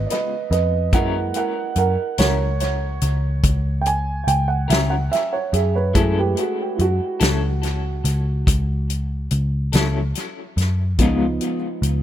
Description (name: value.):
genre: slow blues.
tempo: 48 BPM (dotted quarters).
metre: 12/8.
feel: straight.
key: unclear.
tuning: A4 = 441 Hz.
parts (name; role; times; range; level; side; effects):
dark baby grand piano; accompaniment; 0.0-11.6 s; F3 to Ab5; -23 LUFS; right 4 dB; tape echo.
vintage muted picked electric bass; bass; 0.0-12.0 s; Db2 to Gb2; -20 LUFS; equal; none.
natural country drum kit; drums; 0.1-12.0 s; hi-hat, kick drum, snare drum; -22 LUFS; left 1 dB; tape echo.
electric guitar through a small old amp; accompaniment; 0.9-11.3 s; Db3 to Bb4; -28 LUFS; left 5 dB; tremolo, tape echo.
room: studio reverb.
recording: echo-heavy mix.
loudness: -18 LUFS.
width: side -11 dB against mid.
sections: 0.0-12.0 A section.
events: grand piano solo 0.0-12.0.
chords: 0.0 Db7 (rootless); 0.9 Gb7; 6.0 Gbm7; 11.0 Db7.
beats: | 0.93 2.19 3.44 4.70 | 5.96 7.22 8.47 9.73 | 10.99.